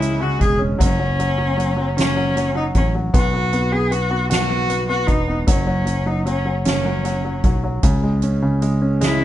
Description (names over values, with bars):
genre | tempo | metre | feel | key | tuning
six-eight pop ballad | 51 BPM (dotted quarters) | 6/8 | straight | unclear | A4 = 438 Hz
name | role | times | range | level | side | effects
rich cello | melody | 0.0-9.2 s | C#4 to G#4 | -22 LUFS | left 1 dB | none
clear upright piano | accompaniment | 0.0-9.2 s | C#3 to F#4 | -23 LUFS | equal | none
fingered electric bass | bass | 0.0-9.2 s | E1 to C#2 | -21 LUFS | equal | none
soft-mallet drum kit | drums | 0.0-9.2 s | hi-hat, kick drum, snare drum | -22 LUFS | equal | none
room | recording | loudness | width
light reverb | rough home demo mix, nothing above 10.9 kHz | -16 LUFS | side -13 dB against mid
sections
0.0-9.2 A section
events
none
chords
0.0 C#m; 0.8 F#m; 3.1 B5; 5.5 F#5; 7.8 C#5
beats
| 0.80 1.97 | 3.13 4.30 | 5.48 6.66 | 7.83 9.01